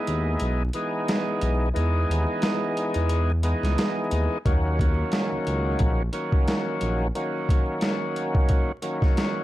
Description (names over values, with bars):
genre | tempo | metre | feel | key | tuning
hip hop, boom-bap hip-hop | 89 BPM | 4/4 | swing 55% on 16ths | Eb phrygian | A4 = 440 Hz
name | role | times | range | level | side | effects
overdriven tonewheel organ | accompaniment | 0.0-9.4 s | Eb3 to G#4 | -26 LUFS | equal | slow rotary speaker, cassette tape, high-pass filter, low-pass filter
smooth gliding synth bass | bass | 0.1-7.1 s | Bb1 to E2 | -24 LUFS | equal | none
boom bap sampler-style drum kit | drums | 0.1-9.3 s | hi-hat, kick drum, snare drum | -24 LUFS | equal | none
room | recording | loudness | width
light reverb | vinyl crackle | -22 LUFS | side -15 dB against mid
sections
0.0-9.4 A section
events
break 0.0-4.5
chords
0.0 Emaj7; 4.5 Ebm7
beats
0.41 1.08 | 1.76 2.43 3.11 3.78 | 4.46 5.13 5.80 6.48 | 7.15 7.83 8.50 9.18